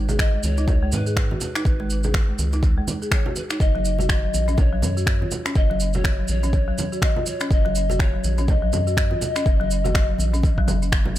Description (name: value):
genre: afro house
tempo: 123 BPM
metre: 4/4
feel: swing 58% on 16ths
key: unclear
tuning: A4 = 441 Hz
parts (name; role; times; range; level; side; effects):
- round analog bass; bass; 0.0-11.2 s; F#1 to G#2; -23 LUFS; equal; sidechain pumping
- folk marimba with medium hard mallets; arpeggios; 0.1-11.2 s; F#3 to G#4; -29 LUFS; left 1 dB; vintage 12-bit sampler grit, sidechain pumping, low-pass filter, tape echo
- cabasa; percussion; 0.1-11.2 s; none; -33 LUFS; right 4 dB; none
- congas; percussion; 0.1-11.2 s; none; -31 LUFS; right 2 dB; none
- mellow hollow pan flute; melody; 0.2-10.9 s; B4 to D#5; -28 LUFS; left 2 dB; tape echo
- electronic finger snaps; drums; 0.2-11.0 s; none; -28 LUFS; equal; dub echo
- electronic kick drum; drums; 0.2-11.0 s; none; -20 LUFS; equal; none
room: studio reverb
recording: echo-heavy mix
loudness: -19 LUFS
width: side -13 dB against mid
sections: 0.0-11.2 A section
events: filter sweep on marimba 0.0-11.2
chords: 0.0 G#m; 3.6 F#6